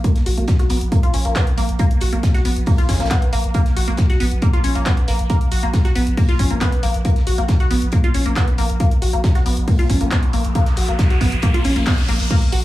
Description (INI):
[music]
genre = driving peak-time techno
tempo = 137 BPM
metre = 4/4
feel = straight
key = Bb phrygian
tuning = A4 = 440 Hz
[part]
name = resonant blip pluck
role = riff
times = 0.0-12.6 s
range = Bb3 to Gb4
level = -23 LUFS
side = left 1 dB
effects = phaser, sidechain pumping, tape echo
[part]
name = saturated sub bass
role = bass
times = 0.0-12.6 s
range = Bb1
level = -20 LUFS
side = equal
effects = overdrive, sidechain pumping, low-pass filter
[part]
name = electronic kick drum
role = drums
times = 0.0-12.4 s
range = none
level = -16 LUFS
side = equal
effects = none
[part]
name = punchy analog drum machine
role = drums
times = 0.0-12.6 s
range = crash cymbal, handclaps, hi-hat, ride cymbal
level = -28 LUFS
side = left 1 dB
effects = sidechain pumping on hats, sidechain pumping on cymbals
[part]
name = tight funk drum kit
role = drums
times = 0.0-12.6 s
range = hi-hat, snare drum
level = -36 LUFS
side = right 2 dB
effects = high-pass filter on hats, high-pass filter on snare, high-pass filter on room
[part]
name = riser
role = sound effects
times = 9.4-12.3 s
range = none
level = -28 LUFS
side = right 1 dB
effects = none
[sound]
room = light reverb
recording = small room ambience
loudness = -15 LUFS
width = side -16 dB against mid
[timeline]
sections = 0.0-12.3 A section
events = riser 9.4-12.3; band accent 11.9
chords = 0.0 Bb5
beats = | 0.04 0.48 0.92 1.36 | 1.79 2.23 2.67 3.11 | 3.55 3.98 4.42 4.86 | 5.30 5.74 6.17 6.61 | 7.05 7.49 7.93 8.36 | 8.80 9.24 9.68 10.12 | 10.55 10.99 11.43 11.87 | 12.31